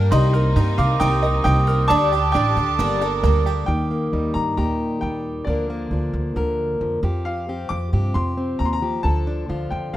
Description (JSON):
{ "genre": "indie folk with a building arrangement", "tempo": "134 BPM", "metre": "4/4", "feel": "straight", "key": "unclear", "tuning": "A4 = 440 Hz", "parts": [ { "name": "picked twelve-string acoustic guitar", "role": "accompaniment", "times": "0.0-3.7 s", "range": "G2 to Bb4", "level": "-27 LUFS", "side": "left 6 dB", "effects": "plate reverb" }, { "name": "rich chamber string section", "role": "sustained chords", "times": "0.0-3.7 s", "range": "C3 to A5", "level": "-28 LUFS", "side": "equal", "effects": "plate reverb" }, { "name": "open-back banjo", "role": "arpeggios", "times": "0.0-3.7 s", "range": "Bb3 to G5", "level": "-27 LUFS", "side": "right 7 dB", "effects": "plate reverb" }, { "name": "upright bass", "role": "bass", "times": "0.0-10.0 s", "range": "G1 to G2", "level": "-21 LUFS", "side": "right 1 dB", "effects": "none" }, { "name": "bright upright piano", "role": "melody", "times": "0.1-10.0 s", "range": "D5 to D6", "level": "-26 LUFS", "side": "left 3 dB", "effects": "plate reverb" }, { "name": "glockenspiel with rubber mallets", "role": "second line", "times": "0.1-3.4 s", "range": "C6 to Eb6", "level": "-24 LUFS", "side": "right 6 dB", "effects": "plate reverb" }, { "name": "fingerpicked plugged-in steel-string acoustic guitar", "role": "accompaniment", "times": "3.7-10.0 s", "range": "Bb2 to Bb4", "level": "-25 LUFS", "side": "left 1 dB", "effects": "plate reverb" } ], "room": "light reverb", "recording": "rough home demo mix", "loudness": "-18 LUFS", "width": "side -14 dB against mid", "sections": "0.0-3.7 A section; 3.7-10.0 B section", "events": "none", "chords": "0.1 Cm7; 1.9 Dsus4; 2.8 Gmadd9; 3.7 Eb; 5.5 Bb/D; 7.0 Fsus2; 9.0 Dm" }